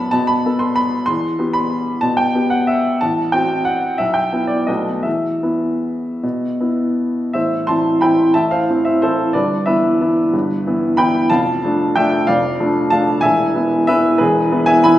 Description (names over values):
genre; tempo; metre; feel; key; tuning
classical, piano waltz; 149-200 BPM; 3/4; rubato; E minor, A minor from 7.3 s; A4 = 439 Hz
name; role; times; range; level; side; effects
clear upright piano; solo; 0.0-15.0 s; E1 to C6; -14 LUFS; equal; none
room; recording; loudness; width
wet recital hall reverb, RT60 1.4 s; heard from further back in the room; -14 LUFS; side -13 dB against mid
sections
0.0-7.3 A section; 7.3-15.0 B section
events
none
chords
0.0 B5/F#; 1.1 Em; 3.0 F#dim/A; 4.0 Em/B; 4.7 B7; 5.1 E5; 7.3 Am; 9.3 Em/G; 11.3 Dm/F; 13.2 E